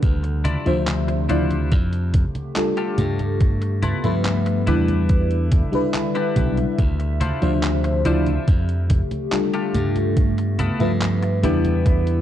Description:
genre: vaporwave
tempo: 71 BPM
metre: 4/4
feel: straight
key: D dorian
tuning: A4 = 444 Hz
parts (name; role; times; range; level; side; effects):
- warbly tape-like pad; sustained chords; 0.0-12.2 s; C3 to E5; -29 LUFS; left 1 dB; chorus, built-in reverb, phaser, vintage 12-bit sampler grit
- slap bass; bass; 0.0-12.2 s; B1 to G2; -21 LUFS; equal; none
- detuned 8-bit digital drum machine; drums; 0.0-12.2 s; congas, handclaps, hi-hat; -28 LUFS; right 1 dB; overdrive, small room ambience
- electronic kick drum; drums; 0.0-12.0 s; none; -18 LUFS; equal; overdrive, small room ambience
- clean electric guitar; riff; 0.2-12.2 s; B3 to D5; -31 LUFS; left 3 dB; analog chorus, analog delay
- FM electric piano with soft pad layer; accompaniment; 0.7-12.2 s; F3 to E5; -23 LUFS; left 1 dB; wide subtle chorus, analog delay
room: light reverb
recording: dark, warm production, cassette tape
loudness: -18 LUFS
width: side -11 dB against mid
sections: 0.0-12.2 A section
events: none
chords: 0.0 Dm9; 1.7 F69; 3.4 G13; 4.7 Em7; 6.8 Dm9; 8.5 F69; 10.2 G13; 11.4 Em7

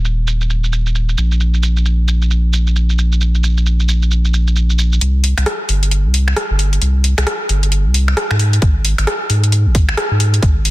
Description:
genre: UK garage, two-step garage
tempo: 133 BPM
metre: 4/4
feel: swing 61% on 16ths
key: C minor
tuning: A4 = 441 Hz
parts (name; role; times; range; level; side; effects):
- saturated sub bass; bass; 0.0-10.7 s; Eb1 to Ab2; -13 LUFS; equal; sidechain pumping
- garage drum kit; drums; 0.0-10.7 s; finger snaps, hi-hat, rim click, shaker; -20 LUFS; equal; high-pass filter on perc, low-pass filter on perc, high-pass filter on hats, low-pass filter on hats, high-pass filter on snare, low-pass filter on snare
- electronic kick drum; drums; 8.6-10.5 s; none; -13 LUFS; equal; none
room: little or no reverb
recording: dense, heavily limited modern master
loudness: -12 LUFS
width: side -18 dB against mid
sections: 0.0-5.0 A section; 5.0-10.7 B section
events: build-up 5.0-10.7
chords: none

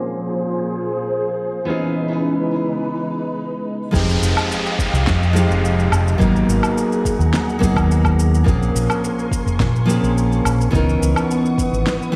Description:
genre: sunset chillout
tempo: 106 BPM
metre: 4/4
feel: straight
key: F minor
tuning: A4 = 445 Hz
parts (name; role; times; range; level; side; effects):
- nylon-string guitar; accompaniment; 0.0-12.2 s; Fb3 to Bb4; -23 LUFS; equal; delay
- soft string machine; sustained chords; 0.0-12.2 s; Bb2 to Eb6; -27 LUFS; equal; phaser, ensemble chorus
- fingered electric bass; bass; 3.9-11.8 s; F1 to Bb2; -20 LUFS; equal; none
- electronic kick drum; drums; 3.9-11.7 s; none; -22 LUFS; equal; overdrive, studio reverb
- electronic shaker, woodblock and snare drum; drums; 3.9-12.1 s; none; -27 LUFS; equal; studio reverb
- downlifter; sound effects; 3.9-8.5 s; none; -30 LUFS; equal; none
room: moderate lush hall reverb, RT60 2.3 s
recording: played on a big sound system in a bare room, large studio reverb, low-pass filter, faint mains hum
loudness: -18 LUFS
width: mono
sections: 0.0-3.9 A section; 3.9-12.2 B section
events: filter sweep 0.0-3.9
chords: 0.0 Bbm9; 1.7 Dbm9; 3.9 Fm9; 6.2 Abm9; 8.5 Bbm9; 10.7 Dbm9

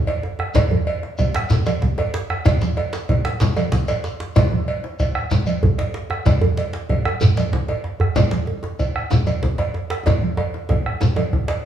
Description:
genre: west african traditional, West African drum ensemble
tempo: 126 BPM (dotted quarters)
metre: 12/8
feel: straight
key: none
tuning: none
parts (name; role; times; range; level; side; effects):
- congas; percussion; 0.1-11.3 s; none; -24 LUFS; right 3 dB; none
- cowbell; percussion; 0.1-11.6 s; none; -27 LUFS; right 2 dB; none
- djembe; percussion; 0.1-11.6 s; none; -24 LUFS; left 3 dB; none
- djembe; percussion; 0.2-11.6 s; none; -23 LUFS; right 2 dB; none
- bombo; percussion; 0.4-11.6 s; none; -22 LUFS; right 1 dB; none
- shekere; percussion; 0.5-11.2 s; none; -27 LUFS; left 1 dB; none
room: wet large studio reverb, RT60 1.0 s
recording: band playing live in one room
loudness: -18 LUFS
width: side -10 dB against mid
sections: 0.0-11.7 A section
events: drum fill 10.1-11.7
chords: none

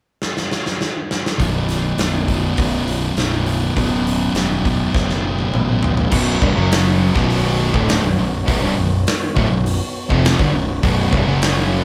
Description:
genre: stoner and doom metal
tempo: 102 BPM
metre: 4/4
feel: straight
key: B minor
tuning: A4 = 437 Hz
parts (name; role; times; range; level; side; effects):
- big rock drum kit; drums; 0.2-11.6 s; crash cymbal, hi-hat, kick drum, snare drum, toms; -23 LUFS; equal; none
- thick fuzz guitar; riff; 1.4-11.8 s; B1 to F#3; -27 LUFS; equal; none
- thick fuzz guitar; riff; 1.4-11.8 s; B1 to F#3; -23 LUFS; equal; distortion
- fuzz fingered electric bass; bass; 1.4-11.8 s; B0 to A1; -26 LUFS; equal; overdrive
- mellow tonewheel organ; sustained chords; 6.1-11.8 s; F#3 to C#5; -31 LUFS; equal; none
- distorted electric guitar; riff; 6.1-11.8 s; B1 to F#3; -24 LUFS; equal; overdrive
room: light reverb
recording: band playing live in one room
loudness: -18 LUFS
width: mono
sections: 0.0-1.4 A section; 1.4-6.1 B section; 6.1-11.8 C section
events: drum fill 0.2-1.4, 4.9-6.1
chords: 0.0 N.C.; 1.4 B5; 6.6 F#5; 7.2 Bm; 11.3 F#5

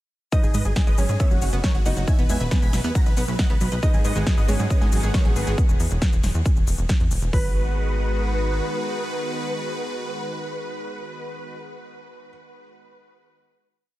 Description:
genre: uplifting trance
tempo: 137 BPM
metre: 4/4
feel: straight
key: G# minor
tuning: A4 = 439 Hz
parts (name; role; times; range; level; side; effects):
- supersaw chords; melody; 0.3-11.6 s; F#4 to B5; -32 LUFS; equal; sidechain pumping, analog delay
- felt-muted upright piano; second line; 0.3-12.3 s; B3 to D#5; -34 LUFS; right 1 dB; diffuse ambient delay
- wide unison pluck; second line; 0.3-12.3 s; F#5 to B6; -39 LUFS; equal; cassette tape, sidechain pumping, diffuse ambient delay
- analog pluck; arpeggios; 0.3-7.5 s; F#3 to E5; -32 LUFS; right 3 dB; chorus, sidechain pumping, diffuse ambient delay
- big-room dance drum kit; drums; 0.3-7.4 s; hi-hat, kick drum; -20 LUFS; equal; overdrive
- big-room dance drum kit; drums; 0.3-7.3 s; hi-hat, shaker, snare drum; -31 LUFS; left 1 dB; overdrive, sidechain pumping on hats, sidechain pumping on perc
- plucky analog bass; bass; 0.4-8.6 s; E1 to G#2; -24 LUFS; equal; sidechain pumping
- lush unison pad; sustained chords; 3.8-11.6 s; D#3 to F#4; -32 LUFS; equal; chorus, sidechain pumping
room: light reverb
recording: none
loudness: -19 LUFS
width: side -16 dB against mid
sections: 0.3-7.3 drop; 7.3-10.8 final chord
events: drop 0.3-7.3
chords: 0.3 G#m7; 1.2 F#5; 2.1 E; 3.0 B; 3.8 G#m7; 5.6 N.C.; 7.3 G#m7

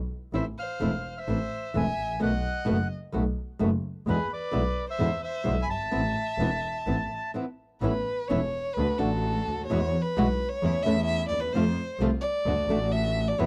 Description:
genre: tango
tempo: 129 BPM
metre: 4/4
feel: rubato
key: A harmonic minor, A major from 7.8 s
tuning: A4 = 440 Hz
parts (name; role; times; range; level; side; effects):
- clear double bass; bass; 0.0-13.5 s; E1 to F2; -32 LUFS; equal; none
- bandoneon; melody; 0.3-7.3 s; B4 to B5; -34 LUFS; equal; none
- warm violin; second line; 0.3-13.5 s; G#4 to G#5; -34 LUFS; equal; none
- flamenco guitar; accompaniment; 0.3-13.5 s; B2 to F#4; -30 LUFS; equal; none
- dark symphonic string section; stabs; 7.8-13.5 s; G#3 to A4; -38 LUFS; equal; none
room: little or no reverb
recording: dry, close 1970s-style studio recording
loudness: -28 LUFS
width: mono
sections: 0.0-7.8 A section; 7.8-13.5 B section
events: break 7.3-7.8; violin solo 7.8-13.5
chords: 0.3 Am; 2.2 B7; 4.1 E7; 5.9 Amadd9; 7.8 Aadd9; 8.8 D; 9.7 Eadd9; 10.6 A/E; 11.5 F; 12.4 D

